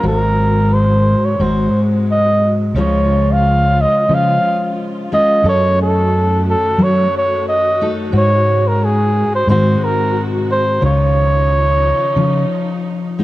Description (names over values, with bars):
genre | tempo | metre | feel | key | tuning
acoustic folk-pop ballad | 89 BPM | 4/4 | straight | Db major | A4 = 440 Hz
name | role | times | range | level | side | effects
mellow flugelhorn | melody | 0.0-12.8 s | Ab4 to F5 | -16 LUFS | right 1 dB | none
fingerpicked steel-string acoustic guitar | accompaniment | 0.0-13.2 s | Gb2 to A4 | -18 LUFS | left 2 dB | none
warm symphonic string section | sustained chords | 0.0-13.2 s | C3 to Gb4 | -27 LUFS | right 2 dB | none
fingered electric bass | bass | 0.0-12.4 s | Ab1 to Gb3 | -15 LUFS | equal | none
room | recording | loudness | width
light reverb | worn, warbling old tape, cassette tape, warbly pitch drift | -12 LUFS | side -16 dB against mid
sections
0.0-13.2 A section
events
none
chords
0.0 Ab7sus4; 1.4 Ab7; 2.7 Db; 5.4 Gbm6; 8.1 Ab7sus4; 9.5 Ab7; 10.8 Dbadd9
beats
| 0.04 0.72 1.39 2.07 | 2.75 3.43 4.10 4.78 | 5.45 6.12 6.79 7.47 | 8.14 8.81 9.48 10.15 | 10.82 11.49 12.16 12.84